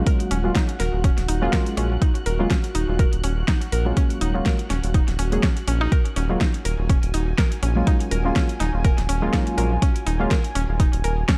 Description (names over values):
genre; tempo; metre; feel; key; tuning
deep house; 123 BPM; 4/4; swing 55% on 16ths; Eb minor; A4 = 440 Hz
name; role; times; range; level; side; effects
warm analog keys; stabs; 0.0-10.3 s; Gb3 to Ab4; -29 LUFS; equal; chorus, sidechain pumping, delay
round analog bass; bass; 0.0-11.2 s; Eb1 to Bb1; -25 LUFS; equal; sidechain pumping
soft string machine; texture; 0.0-11.4 s; Gb4 to Gb6; -40 LUFS; equal; ensemble chorus, sidechain pumping
warbly tape-like pad; texture; 0.0-11.4 s; Gb4 to Ab5; -37 LUFS; equal; chorus, built-in reverb, sidechain pumping
mallet-like synth pluck; arpeggios; 0.1-11.4 s; Db4 to Bb4; -33 LUFS; equal; chorus, sidechain pumping, digital delay
deep house drum kit; drums; 0.1-11.4 s; hi-hat, snare drum; -30 LUFS; equal; none
electronic kick drum; drums; 0.1-11.4 s; none; -22 LUFS; equal; none
room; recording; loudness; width
little or no reverb; none; -21 LUFS; mono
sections
0.0-11.4 A section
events
none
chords
0.0 Ebm11